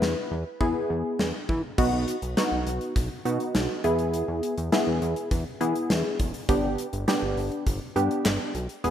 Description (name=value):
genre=synth-pop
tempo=102 BPM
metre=4/4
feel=straight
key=unclear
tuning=A4 = 440 Hz
part: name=funky polysynth comp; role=accompaniment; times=0.0-8.9 s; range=B3 to B4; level=-27 LUFS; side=equal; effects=chorus
part: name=fat analog bass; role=bass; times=0.0-8.9 s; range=E1 to E3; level=-29 LUFS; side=equal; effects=none
part: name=gated 80s drum kit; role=drums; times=0.0-8.9 s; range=crash cymbal, handclaps, hi-hat, kick drum, snare drum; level=-28 LUFS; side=equal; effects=none
room=moderate lush hall reverb, RT60 2.0 s, small room ambience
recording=rough home demo mix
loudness=-24 LUFS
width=side -10 dB against mid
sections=0.0-1.8 A section; 1.8-8.9 B section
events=none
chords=0.0 E; 1.8 B; 3.8 E; 6.5 G